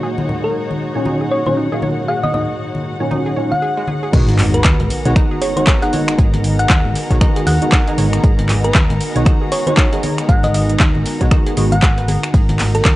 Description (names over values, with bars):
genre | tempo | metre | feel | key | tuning
deep house | 117 BPM | 4/4 | swing 59% on 16ths | G# minor | A4 = 435 Hz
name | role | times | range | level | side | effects
deep dark ambient pad | sustained chords | 0.0-13.0 s | G#2 to C#5 | -29 LUFS | right 1 dB | none
analog pluck | arpeggios | 0.0-12.4 s | G#3 to C#5 | -29 LUFS | right 2 dB | chorus, sidechain pumping, analog delay
percussive organ stab | stabs | 0.0-11.7 s | A#2 to F#4 | -22 LUFS | equal | ensemble chorus, sidechain pumping, analog delay
rich chamber violin section | texture | 0.0-13.0 s | F#4 to A#5 | -31 LUFS | equal | none
rich studio string section | texture | 0.0-13.0 s | G#3 to F#5 | -30 LUFS | left 1 dB | sidechain pumping
congas | percussion | 0.2-12.7 s | none | -24 LUFS | left 1 dB | none
thumb-piano-like synth pluck | melody | 0.4-12.9 s | A#4 to F#5 | -21 LUFS | equal | chorus, analog delay
hollow-body short-scale fingered electric bass | bass | 4.1-13.0 s | G#1 to D#2 | -17 LUFS | equal | sidechain pumping
breakbeat sampler-style drum kit | drums | 4.1-13.0 s | hi-hat, snare drum, tambourine | -32 LUFS | equal | none
deep house drum kit | drums | 4.1-13.0 s | crash cymbal, finger snaps, handclaps, hi-hat, ride cymbal | -21 LUFS | equal | overdrive
electronic kick drum | drums | 4.1-13.0 s | none | -13 LUFS | equal | overdrive
sub drop | sound effects | 4.1-6.2 s | none | -22 LUFS | equal | none
room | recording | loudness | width
digital ambience | dry, gritty hardware recording, transformer saturation, nothing above 10.7 kHz | -13 LUFS | side -17 dB against mid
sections
0.0-4.1 A section; 4.1-13.0 B section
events
filter sweep on synth arpeggio sound 0.0-4.1; drop 4.1-13.0; impact 4.1-6.2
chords
0.0 D#m7/G#; 4.1 G#m7; 12.3 D#m7/G#